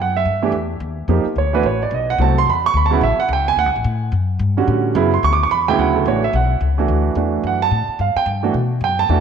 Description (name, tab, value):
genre	jazz, small-group swing and bop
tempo	217 BPM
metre	4/4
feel	swing 61% on 8ths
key	D major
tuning	A4 = 441 Hz
part	warm baby grand piano	accompaniment	0.0-9.2 s	D2 to D6	-17 LUFS	right 6 dB	none
part	upright bass	bass	0.0-9.2 s	A1 to B2	-19 LUFS	left 3 dB	none
room	moderate echo chamber reverb, RT60 1.9 s, small room ambience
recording	1960s-style stereo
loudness	-15 LUFS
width	side -7 dB against mid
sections	0.0-5.8 A section; 5.8-9.2 A section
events	none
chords	0.3 Em7; 0.8 Ebadd9; 1.4 D; 1.9 B5; 2.5 E5; 3.0 A; 3.6 Dmaj7; 6.9 Dadd9; 8.0 G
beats	| 0.26 0.53 0.81 1.08 | 1.36 1.64 1.91 2.19 | 2.46 2.74 3.02 3.29 | 3.57 3.84 4.12 4.40 | 4.67 4.95 5.22 5.50 | 5.78 6.05 6.33 6.60 | 6.88 7.16 7.43 7.71 | 7.98 8.26 8.54 8.81 | 9.09